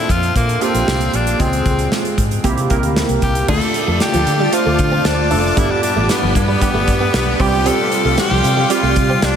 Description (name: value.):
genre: 1980s-style pop.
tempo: 115 BPM.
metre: 4/4.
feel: straight.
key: unclear.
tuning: A4 = 440 Hz.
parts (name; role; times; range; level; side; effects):
raspy tenor saxophone; melody; 0.0-9.4 s; Bb3 to A4; -20 LUFS; left 2 dB; tape echo.
glassy digital keys; accompaniment; 0.0-9.4 s; G2 to C5; -19 LUFS; right 2 dB; chorus.
vintage muted fingered electric bass; bass; 0.1-9.4 s; F1 to D3; -19 LUFS; equal; none.
modern studio drum kit; drums; 0.1-9.3 s; crash cymbal, hi-hat, kick drum, snare drum; -20 LUFS; equal; none.
string machine, violins; sustained chords; 3.5-9.4 s; F4 to C6; -22 LUFS; equal; ensemble chorus.
direct-recorded clean electric guitar; riff; 3.5-9.2 s; F3 to D4; -25 LUFS; right 2 dB; none.
room: wet huge ambient reverb, RT60 7.8 s.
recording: dreamy mix soaked in reverb.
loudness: -13 LUFS.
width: side -8 dB against mid.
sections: 0.0-3.5 A section; 3.5-9.4 B section.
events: none.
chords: 0.0 Bbmaj7; 1.4 Dbmaj7; 2.4 C7; 3.5 Dm; 5.6 G; 7.4 Csus4.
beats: 0.35 0.88 | 1.40 1.92 2.44 2.96 | 3.48 4.01 4.53 5.05 | 5.57 6.09 6.61 7.14 | 7.66 8.18 8.70 9.22.